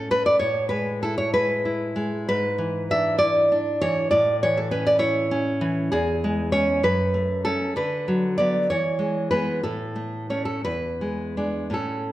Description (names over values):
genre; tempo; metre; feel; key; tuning
romantic piece for solo classical guitar; 51-68 BPM (dotted quarters); 6/8; rubato; unclear; A4 = 442 Hz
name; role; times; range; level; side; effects
nylon-string guitar; solo; 0.0-12.1 s; E2 to E5; -21 LUFS; equal; none
room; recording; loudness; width
moderate recital hall reverb, RT60 1.5 s; none; -21 LUFS; side -14 dB against mid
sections
0.0-12.1 A section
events
none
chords
0.4 E/A; 2.3 E7/G#; 4.1 A; 5.9 C#m/E; 6.8 F#m; 7.7 Bm/D; 8.7 E; 9.6 A; 10.6 E7